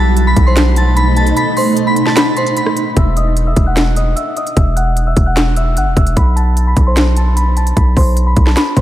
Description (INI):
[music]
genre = hip hop, trap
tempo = 150 BPM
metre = 4/4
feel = half-time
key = unclear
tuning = A4 = 440 Hz
[part]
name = glassy synth bell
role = melody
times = 0.0-8.8 s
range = C5 to B6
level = -18 LUFS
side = equal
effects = chorus, low-pass filter, tape echo
[part]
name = granular cloud pad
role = sustained chords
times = 0.0-2.9 s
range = B2 to D#4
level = -18 LUFS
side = right 2 dB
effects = built-in reverb, ensemble chorus
[part]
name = hard-hitting 808-style bass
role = bass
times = 0.0-8.8 s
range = E1 to B1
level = -12 LUFS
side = equal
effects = none
[part]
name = trap drum kit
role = drums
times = 0.2-8.8 s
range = handclaps, hi-hat, kick drum, rim click, snare drum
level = -15 LUFS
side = equal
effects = overdrive
[sound]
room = light reverb, digital ambience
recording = none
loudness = -10 LUFS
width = side -13 dB against mid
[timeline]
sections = 0.0-3.0 A section; 3.0-8.8 B section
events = break 1.4-3.0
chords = 0.0 B7; 3.0 Esus2; 6.2 Amadd9/B